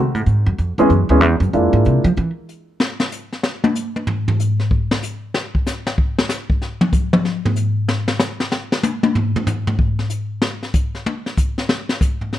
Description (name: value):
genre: jazz piano trio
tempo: 189 BPM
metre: 4/4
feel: swing 64% on 8ths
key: unclear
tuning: A4 = 440 Hz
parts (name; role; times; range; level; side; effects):
- upright bass; bass; 0.0-2.3 s; D2 to F3; -15 LUFS; right 1 dB; none
- jazz brush drum kit; drums; 0.1-12.4 s; hi-hat, kick drum, snare drum, toms; -17 LUFS; left 1 dB; none
- warm upright piano; melody; 0.8-2.0 s; E3 to G#4; -16 LUFS; equal; plate reverb
room: light reverb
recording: dark, warm production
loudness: -16 LUFS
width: side -12 dB against mid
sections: 0.0-2.8 A section; 2.8-12.4 A section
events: upright bass solo 0.0-2.8; drum solo 2.8-12.4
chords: 0.3 C#m (rootless); 1.5 Bb7#11; 2.8 N.C.